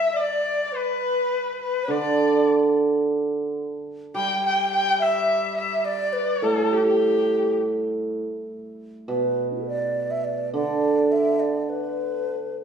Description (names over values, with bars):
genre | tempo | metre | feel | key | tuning
chinese traditional, Chinese chamber ensemble | 104 BPM | 4/4 | rubato | unclear | A4 = 440 Hz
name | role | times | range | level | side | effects
breathy hollow low xiao | melody | 0.0-12.6 s | D4 to G5 | -25 LUFS | equal | none
warm erhu | second line | 0.0-7.5 s | G4 to G5 | -25 LUFS | left 4 dB | none
hammered dulcimer | accompaniment | 1.9-12.3 s | A2 to G3 | -23 LUFS | right 3 dB | none
room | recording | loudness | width
wet recital hall reverb, RT60 1.3 s | small room ambience | -21 LUFS | side -7 dB against mid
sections
0.0-8.8 A section; 8.8-12.6 B section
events
none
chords
none